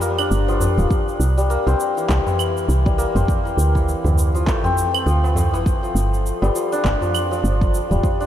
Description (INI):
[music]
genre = organic downtempo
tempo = 101 BPM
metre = 4/4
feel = swing 58% on 16ths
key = G dorian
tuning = A4 = 440 Hz
[part]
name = santur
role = arpeggios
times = 0.0-8.3 s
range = E3 to D4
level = -21 LUFS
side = left 2 dB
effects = ping-pong delay
[part]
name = electronic shaker, claves and handclaps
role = drums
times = 0.0-8.3 s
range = none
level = -29 LUFS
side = right 3 dB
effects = overdrive
[part]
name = tabla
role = percussion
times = 0.0-8.0 s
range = none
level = -26 LUFS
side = equal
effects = none
[part]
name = woody FM bass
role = bass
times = 0.3-8.0 s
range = D1 to D2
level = -18 LUFS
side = equal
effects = none
[part]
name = electronic kick drum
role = drums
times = 0.9-8.2 s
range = none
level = -21 LUFS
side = equal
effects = none
[sound]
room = moderate huge ambient reverb, RT60 7.9 s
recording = dreamy mix soaked in reverb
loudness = -16 LUFS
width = side -11 dB against mid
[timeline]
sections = 0.0-8.3 A section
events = none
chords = 0.0 Gm7; 0.9 C7; 3.3 Dm9; 5.7 G5